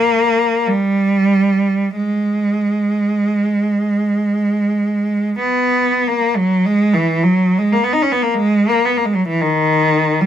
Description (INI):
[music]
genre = classical, free, expressive piece for unaccompanied cello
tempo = 35-57 BPM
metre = 3/4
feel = rubato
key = G# minor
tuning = A4 = 440 Hz
[part]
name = rich cello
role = solo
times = 0.0-10.3 s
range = D#3 to D#4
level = -14 LUFS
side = equal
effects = none
[sound]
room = light reverb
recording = minimal, uncompressed stereo recording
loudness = -14 LUFS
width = side -10 dB against mid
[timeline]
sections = 0.0-6.1 A section; 6.1-10.3 A section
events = none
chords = none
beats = 0.70 | 1.97 3.30 4.64 | 6.08 7.22 8.33 | 9.40